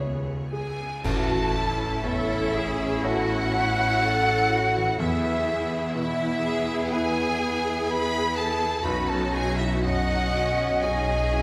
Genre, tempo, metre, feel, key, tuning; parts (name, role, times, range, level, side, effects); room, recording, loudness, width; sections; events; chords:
cinematic, emotional film score for orchestra; 61 BPM; 4/4; rubato; A4 = 438 Hz
bright symphonic violin section; melody; 0.0-11.4 s; C#5 to B5; -35 LUFS; equal
warm clarinet; second line; 0.0-0.5 s; C#5; -44 LUFS; equal
clear concert grand piano; accompaniment; 0.0-11.4 s; A1 to D#5; -35 LUFS; equal
clear symphonic viola section; accompaniment; 0.0-11.4 s; B3 to D#5; -36 LUFS; equal
concert harp; arpeggios; 0.0-11.4 s; A2 to C#6; -36 LUFS; equal
bright symphonic cello section; bass; 0.0-11.4 s; C#2 to A4; -34 LUFS; equal
clear symphonic double bass section; bass; 0.0-11.4 s; A1 to E2; -34 LUFS; equal
rich symphonic violin section; second line; 0.5-11.4 s; E4 to B4; -37 LUFS; equal
silver concert flute; second line; 0.5-11.4 s; E5 to B5; -31 LUFS; equal
mellow French horn section; sustained chords; 1.0-11.4 s; B3 to D#5; -35 LUFS; equal
clash cymbals and concert bass drum; percussion; 1.0-3.0 s; -38 LUFS; equal
wet scoring stage reverb, RT60 1.8 s; -25 LUFS; mono
0.0-1.0 A section; 1.0-11.4 B section
band accent 1.0-2.0
0.0 C#7(no3); 1.0 A; 5.0 E; 8.8 Badd9